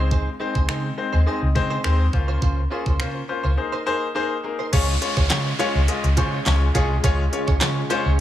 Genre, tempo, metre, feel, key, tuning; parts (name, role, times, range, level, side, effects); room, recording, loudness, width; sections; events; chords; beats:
dance-pop; 104 BPM; 4/4; straight; Db major; A4 = 440 Hz
clear concert grand piano; accompaniment; 0.0-8.1 s; Ab3 to Eb5; -25 LUFS; left 5 dB; sidechain pumping
direct-recorded clean electric guitar; riff; 0.0-8.2 s; Db4 to Db5; -30 LUFS; right 7 dB; ensemble chorus
vintage muted fingered electric bass; bass; 0.0-8.2 s; C2 to Db3; -21 LUFS; equal; sidechain pumping
pop drum kit; drums; 0.1-8.0 s; crash cymbal, finger snaps, handclaps, hi-hat, kick drum, snare drum; -24 LUFS; equal
shimmering ambient pad; sustained chords; 5.6-8.2 s; Db3 to Ab4; -32 LUFS; right 1 dB; chorus, built-in reverb, sidechain pumping
downlifter; sound effects; 4.7-8.2 s; -30 LUFS; right 1 dB
group handclap; percussion; 5.3-7.8 s; -37 LUFS; right 4 dB
little or no reverb; small room ambience; -19 LUFS; side -12 dB against mid
0.0-4.7 A section; 4.7-8.2 B section
0.0 Ab/Db; 2.1 Bbmadd9/Db; 3.6 Abadd9; 4.7 Db
| 0.11 0.69 1.27 1.84 | 2.42 3.00 3.58 4.15 | 4.73 5.31 5.88 6.46 | 7.04 7.61 8.19